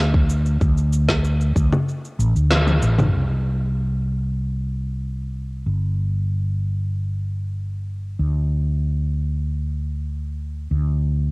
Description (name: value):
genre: sunset chillout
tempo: 95 BPM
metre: 4/4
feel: straight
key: unclear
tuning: A4 = 440 Hz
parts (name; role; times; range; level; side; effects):
- mellow fretless electric bass; bass; 0.0-11.3 s; G1 to D2; -20 LUFS; equal; none
- electronic kick drum; drums; 0.1-1.7 s; none; -20 LUFS; equal; cassette tape
- deep house drum kit; drums; 0.3-3.1 s; cabasa, congas, snare drum, toms; -22 LUFS; equal; low-pass filter on snare, cassette tape, low-pass filter on perc, low-pass filter on toms
room: light reverb, digital ambience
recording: home recording on cassette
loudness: -19 LUFS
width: side -28 dB against mid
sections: 0.0-3.1 A section; 3.1-11.3 B section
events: drum fill 2.5-3.1; band accent 2.5-2.8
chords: none